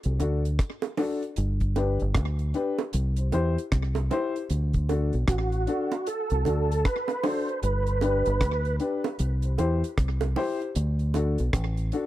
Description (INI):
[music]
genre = roots reggae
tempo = 77 BPM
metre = 4/4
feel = swing 62% on 16ths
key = D mixolydian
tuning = A4 = 439 Hz
[part]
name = dark upright piano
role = stabs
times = 0.0-12.1 s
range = D4 to C5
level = -29 LUFS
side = left 4 dB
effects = none
[part]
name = deep reggae drum kit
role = drums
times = 0.0-12.1 s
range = hi-hat, kick drum, rim click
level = -27 LUFS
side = equal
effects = slapback echo
[part]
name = deep dub fingered electric bass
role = bass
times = 0.1-11.9 s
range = G1 to E2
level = -25 LUFS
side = equal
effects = none
[part]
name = bongos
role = percussion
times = 0.2-11.4 s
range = none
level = -32 LUFS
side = right 8 dB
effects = none
[part]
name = tonewheel organ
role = melody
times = 5.3-8.8 s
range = F#4 to C5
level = -29 LUFS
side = right 3 dB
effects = overdrive, chorus vibrato, slow rotary speaker, tape echo
[sound]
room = small room ambience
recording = dry, close 1970s-style studio recording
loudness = -24 LUFS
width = side -14 dB against mid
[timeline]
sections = 0.0-12.1 A section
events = none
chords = 0.0 D; 1.4 G; 2.9 C; 4.5 D; 7.6 G; 9.2 C; 10.8 D